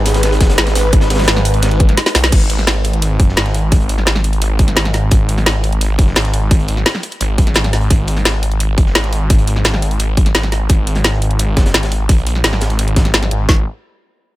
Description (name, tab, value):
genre	dark technical drum and bass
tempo	172 BPM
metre	4/4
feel	straight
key	G# minor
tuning	A4 = 440 Hz
part	swarming drone	sustained chords	0.0-2.3 s	G#3 to B4	-21 LUFS	equal	built-in reverb, sidechain pumping
part	snarling distorted saw bass	bass	0.0-13.6 s	F#1 to B1	-15 LUFS	equal	distortion, tube saturation
part	crunchy breakbeat drum kit	drums	0.1-13.2 s	hi-hat, snare drum	-26 LUFS	equal	high-pass filter on hats, high-pass filter on snare, high-pass filter on room
part	drum and bass drum kit	drums	0.1-13.4 s	crash cymbal, hi-hat, snare drum	-16 LUFS	equal	none
part	drum and bass drum kit	drums	0.4-13.6 s	kick drum, snare drum	-11 LUFS	equal	none
room	digital ambience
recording	none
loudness	-12 LUFS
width	side -17 dB against mid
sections	0.0-2.3 A section; 2.3-13.5 B section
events	drop 0.0-2.3; drum fill 2.0-2.3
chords	0.0 G#5; 2.3 N.C.